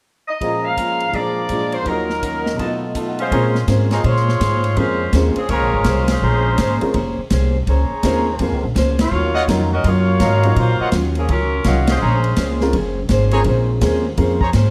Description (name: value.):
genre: jazz, big band swing.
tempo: 166 BPM.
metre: 4/4.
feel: swing 64% on 8ths.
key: Bb minor.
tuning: A4 = 441 Hz.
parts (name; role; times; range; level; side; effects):
warm saxophone section; melody; 0.3-6.8, 9.0-12.6 s; F3 to F5; -24 LUFS; equal; none.
picked steel-string acoustic guitar; accompaniment; 0.4-14.7 s; Bb2 to C5; -27 LUFS; equal; none.
warm concert grand piano; accompaniment; 0.4-14.4 s; Eb2 to A5; -25 LUFS; equal; none.
warm trumpet section; stabs; 0.4-14.5 s; Db4 to Bb5; -26 LUFS; equal; none.
swinging big-band drum kit; drums; 0.4-14.6 s; hi-hat, kick drum, ride cymbal, snare drum; -27 LUFS; equal; none.
upright bass; bass; 3.3-14.7 s; F1 to Bb2; -20 LUFS; equal; none.
room: moderate large studio reverb, RT60 1.1 s.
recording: none.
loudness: -18 LUFS.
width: mono.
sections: 0.4-3.3 A section; 3.3-14.7 B section.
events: band accent 6.0, 8.9, 11.8.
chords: 0.4 Bbm7; 1.1 Bb7; 1.9 Ebm7; 2.6 B7#11; 3.3 Bbm9; 9.1 Ebm9; 12.0 Bbm9.